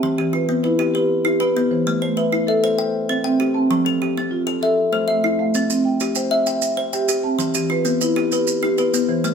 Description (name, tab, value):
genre	southern african traditional, mbira-style interlocking cycle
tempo	130 BPM (dotted quarters)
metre	12/8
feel	straight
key	unclear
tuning	A4 = 440 Hz
part	kalimba	arpeggios	0.0-9.3 s	E3 to G5	-20 LUFS	left 4 dB	none
part	marimba with soft mallets	arpeggios	0.0-9.3 s	E3 to A5	-20 LUFS	right 2 dB	none
part	maracas	percussion	5.5-9.3 s	none	-26 LUFS	right 6 dB	none
room	moderate large studio reverb, RT60 0.9 s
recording	band playing live in one room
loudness	-17 LUFS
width	side -6 dB against mid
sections	0.0-9.3 A section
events	none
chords	0.0 Em; 1.9 Am; 2.8 C; 3.7 F; 4.6 Am; 5.5 C; 7.4 Em